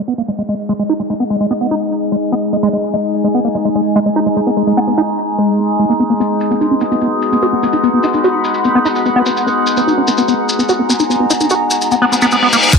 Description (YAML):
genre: psychedelic trance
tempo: 147 BPM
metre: 4/4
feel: straight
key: G# minor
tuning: A4 = 440 Hz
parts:
  - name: overtone-sweeping drone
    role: sustained chords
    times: 0.3-12.8 s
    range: G#3 to D#4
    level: -18 LUFS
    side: left 2 dB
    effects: chorus, built-in reverb, sidechain pumping
  - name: downlifter and reverse cymbal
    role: sound effects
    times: 0.0-2.9, 12.1-12.8 s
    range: none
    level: -13 LUFS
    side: left 3 dB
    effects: none
  - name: warbly tape-like pad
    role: texture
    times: 0.0-12.8 s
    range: G#3 to B5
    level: -19 LUFS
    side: right 1 dB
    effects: chorus, built-in reverb, sidechain pumping
  - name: liquid acid bass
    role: riff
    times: 0.1-12.8 s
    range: G#3 to F#4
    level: -15 LUFS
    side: moving between left 3 dB and right 3 dB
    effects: chorus, auto-pan, sidechain pumping, digital delay
  - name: maracas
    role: percussion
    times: 6.2-12.8 s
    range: none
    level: -21 LUFS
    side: left 3 dB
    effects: none
  - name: electronic kick drum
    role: drums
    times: 12.7-12.8 s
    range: none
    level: -8 LUFS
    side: equal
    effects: none
  - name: garage drum kit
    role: drums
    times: 12.7-12.8 s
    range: crash cymbal, hi-hat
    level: -18 LUFS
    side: left 4 dB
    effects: none
room: moderate plate reverb, RT60 2.0 s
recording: low-pass filter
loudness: -12 LUFS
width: side -5 dB against mid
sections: 0.0-12.7 A section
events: filter sweep 0.0-12.7; reverse cymbal 12.1-12.7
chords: 0.0 G#5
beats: 0.08 0.49 0.90 | 1.30 1.71 2.12 2.53 | 2.94 3.34 3.75 4.16 | 4.57 4.98 5.38 5.79 | 6.20 6.61 7.02 7.42 | 7.83 8.24 8.65 9.06 | 9.47 9.87 10.28 10.69 | 11.10 11.51 11.91 12.32 | 12.73